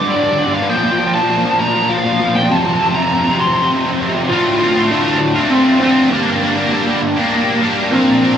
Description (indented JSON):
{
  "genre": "rock",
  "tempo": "100 BPM",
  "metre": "3/4",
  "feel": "straight",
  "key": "unclear",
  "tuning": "A4 = 440 Hz",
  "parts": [
    { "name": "lead guitar through a small cranked amp", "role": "melody", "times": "0.0-8.4 s", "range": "Bb3 to D6", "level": "-16 LUFS", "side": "equal", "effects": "overdrive, analog delay" },
    { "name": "cranked stack guitar", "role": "riff", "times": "0.0-8.4 s", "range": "D2 to Bb4", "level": "-15 LUFS", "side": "equal", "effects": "overdrive, analog chorus" }
  ],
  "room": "moderate plate reverb, RT60 2.8 s",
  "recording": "dreamy mix soaked in reverb, small room ambience",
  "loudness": "-12 LUFS",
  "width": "side -8 dB against mid",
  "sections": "0.0-4.3 A section; 4.3-8.4 B section",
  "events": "build-up 0.0-4.3",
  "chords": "0.0 G5; 0.7 Bb5; 2.5 F5; 4.3 Dm7; 6.1 Gm"
}